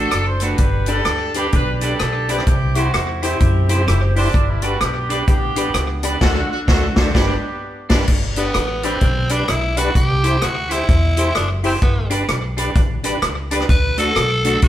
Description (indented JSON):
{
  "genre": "ska",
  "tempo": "128 BPM",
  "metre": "4/4",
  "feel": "swing 62% on 8ths",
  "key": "G major",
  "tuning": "A4 = 440 Hz",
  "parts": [
    { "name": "warm horn section", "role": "melody", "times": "0.0-7.9 s", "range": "G3 to C5", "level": "-23 LUFS", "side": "equal", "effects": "none" },
    { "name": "electric guitar at the edge of break-up", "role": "accompaniment", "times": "0.0-14.6 s", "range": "A3 to C5", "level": "-25 LUFS", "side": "right 3 dB", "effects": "slapback echo" },
    { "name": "upright bass", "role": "bass", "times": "0.0-14.7 s", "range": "F#1 to F#2", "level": "-21 LUFS", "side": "equal", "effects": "none" },
    { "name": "swinging big-band drum kit", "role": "drums", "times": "0.1-14.7 s", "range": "crash cymbal, hi-hat, kick drum, rim click, snare drum", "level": "-19 LUFS", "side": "equal", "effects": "slapback echo" },
    { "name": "percussive tonewheel organ", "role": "stabs", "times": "0.9-14.7 s", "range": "D4 to C5", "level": "-26 LUFS", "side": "left 3 dB", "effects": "overdrive, chorus vibrato, slow rotary speaker" },
    { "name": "raspy tenor saxophone", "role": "melody", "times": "8.4-14.7 s", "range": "B3 to B4", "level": "-21 LUFS", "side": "equal", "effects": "none" }
  ],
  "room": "moderate stone room reverb, RT60 1.3 s",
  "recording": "band playing live in one room",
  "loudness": "-15 LUFS",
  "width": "side -12 dB against mid",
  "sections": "0.0-8.1 A section; 8.1-14.7 B section",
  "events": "band accent 6.2-8.1; tenor saxophone solo 8.1-14.7",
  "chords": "0.0 D; 0.6 G; 2.5 C; 4.3 G; 6.2 D; 7.2 G; 10.0 C; 11.8 G; 13.7 D",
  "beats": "0.12 | 0.59 1.06 1.53 2.00 | 2.47 2.94 3.40 3.87 | 4.34 4.81 5.28 5.75 | 6.21 6.68 7.15 7.62 | 8.09 8.55 9.02 9.49 | 9.96 10.42 10.89 11.36 | 11.82 12.29 12.76 13.22 | 13.69 14.16 14.62"
}